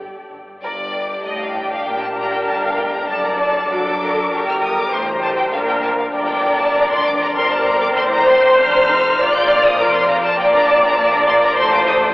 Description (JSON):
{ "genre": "quick classical-period movement for string orchestra", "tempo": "99 BPM", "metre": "4/4", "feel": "rubato", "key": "G minor", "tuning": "A4 = 439 Hz", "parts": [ { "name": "clear symphonic violin section", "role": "melody", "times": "0.0-12.0 s", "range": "D5 to G6", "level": "-21 LUFS", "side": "left 1 dB", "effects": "none" }, { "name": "rich symphonic cello section", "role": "bass", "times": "0.0-12.1 s", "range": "F2 to F#3", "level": "-29 LUFS", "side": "equal", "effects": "none" }, { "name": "rich symphonic double bass section", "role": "bass", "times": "0.0-12.1 s", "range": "F1 to F#2", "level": "-32 LUFS", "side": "equal", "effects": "none" }, { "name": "clear symphonic violin section", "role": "second line", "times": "0.6-12.1 s", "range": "Bb3 to D5", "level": "-19 LUFS", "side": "equal", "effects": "none" }, { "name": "rich symphonic viola section", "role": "accompaniment", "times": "1.9-12.1 s", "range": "F#4 to D5", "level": "-17 LUFS", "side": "equal", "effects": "none" } ], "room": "wet cathedral reverb, RT60 5.6 s", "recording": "worn, warbling old tape, cassette tape, warbly pitch drift, telephone sound", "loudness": "-14 LUFS", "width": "side -22 dB against mid", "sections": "0.6-12.1 A section", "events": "none", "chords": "0.0 G5; 0.6 Gm; 3.1 D/F#; 4.3 Gm; 5.5 Bb; 8.0 F/A; 9.2 Bb; 10.4 Bbmaj7; 11.6 F/A" }